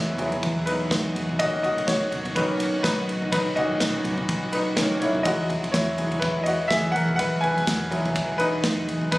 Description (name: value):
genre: piano-driven pop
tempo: 124 BPM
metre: 4/4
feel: swing 56% on 16ths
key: unclear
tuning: A4 = 440 Hz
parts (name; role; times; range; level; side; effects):
- clear baby grand piano; accompaniment; 0.0-9.2 s; A#2 to G#5; -24 LUFS; equal; none
- warm studio string section; sustained chords; 0.0-9.2 s; A#2 to F#4; -32 LUFS; right 1 dB; none
- clear double bass; bass; 0.0-9.2 s; E1 to B1; -30 LUFS; equal; none
- natural country drum kit; drums; 0.2-9.2 s; kick drum, ride cymbal, snare drum, toms; -28 LUFS; equal; none
room: moderate recital hall reverb, RT60 1.6 s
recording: recorded on a phone in the room, studio reverb, compression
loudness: -21 LUFS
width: side -19 dB against mid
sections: 0.0-9.2 A section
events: grand piano solo 0.0-9.2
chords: 0.0 Eadd9; 1.4 Bmaj7; 5.3 Eadd9